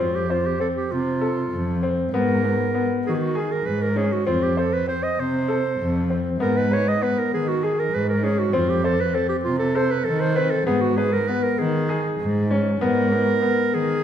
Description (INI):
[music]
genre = contemporary instrumental, chamber music in an uneven meter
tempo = 197 BPM (eighths)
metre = 7/8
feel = straight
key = unclear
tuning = A4 = 440 Hz
[part]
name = clear clarinet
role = melody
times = 0.0-14.0 s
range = F4 to D#5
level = -24 LUFS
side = right 3 dB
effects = none
[part]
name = clear concert grand piano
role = arpeggios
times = 0.0-13.9 s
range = B3 to C5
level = -24 LUFS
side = left 3 dB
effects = none
[part]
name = dark cello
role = bass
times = 0.0-14.0 s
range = F2 to Eb3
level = -24 LUFS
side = equal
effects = none
[sound]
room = wet scoring stage reverb, RT60 2.0 s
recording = minimal, uncompressed stereo recording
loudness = -19 LUFS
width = side -9 dB against mid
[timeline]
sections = 0.0-14.0 A section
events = none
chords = 0.0 F; 2.1 G#m; 4.3 F; 6.4 G#m; 8.5 F7; 10.7 G#m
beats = | 0.00 0.30 0.61 0.91 1.22 1.52 1.83 | 2.13 2.44 2.74 3.05 3.35 3.66 3.96 | 4.27 4.57 4.88 5.18 5.49 5.79 6.10 | 6.41 6.71 7.02 7.32 7.63 7.93 8.24 | 8.54 8.85 9.15 9.46 9.76 10.07 10.37 | 10.68 10.98 11.29 11.59 11.90 12.20 12.51 | 12.81 13.12 13.42 13.73 14.04